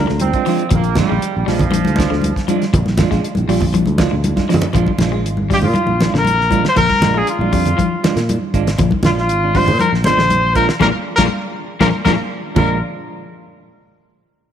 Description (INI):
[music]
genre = afrobeat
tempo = 119 BPM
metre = 4/4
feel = straight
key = Bb mixolydian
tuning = A4 = 437 Hz
[part]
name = warm trumpet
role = melody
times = 0.0-0.1, 5.5-12.8 s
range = F4 to C5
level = -17 LUFS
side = left 2 dB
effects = slapback echo
[part]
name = semi-hollow electric guitar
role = stabs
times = 0.0-12.8 s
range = F3 to F4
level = -22 LUFS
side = right 9 dB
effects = spring reverb
[part]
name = fingered electric bass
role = bass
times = 0.0-12.8 s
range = Ab1 to Bb2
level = -19 LUFS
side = equal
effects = none
[part]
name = electric guitar at the edge of break-up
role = arpeggios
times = 0.1-12.7 s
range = Bb2 to Bb3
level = -22 LUFS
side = left 9 dB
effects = none
[part]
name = damped 70s drum kit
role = drums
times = 0.1-12.7 s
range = crash cymbal, hi-hat, kick drum, snare drum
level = -21 LUFS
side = equal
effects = none
[part]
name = brilliant trombone section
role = second line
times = 0.2-2.4 s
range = F3 to C4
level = -22 LUFS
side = right 9 dB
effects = none
[part]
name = congas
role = percussion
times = 0.2-12.7 s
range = none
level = -20 LUFS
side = equal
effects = none
[sound]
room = moderate echo chamber reverb, RT60 2.0 s, studio reverb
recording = 1960s-style stereo with parts hard left and right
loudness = -13 LUFS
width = side -9 dB against mid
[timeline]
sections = 0.0-4.8 A section; 4.8-12.8 B section; 12.8-14.5 C section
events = drum fill 4.4-4.8, 11.8-12.8; band accent 10.8-12.8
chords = 0.0 Bb7; 12.8 N.C.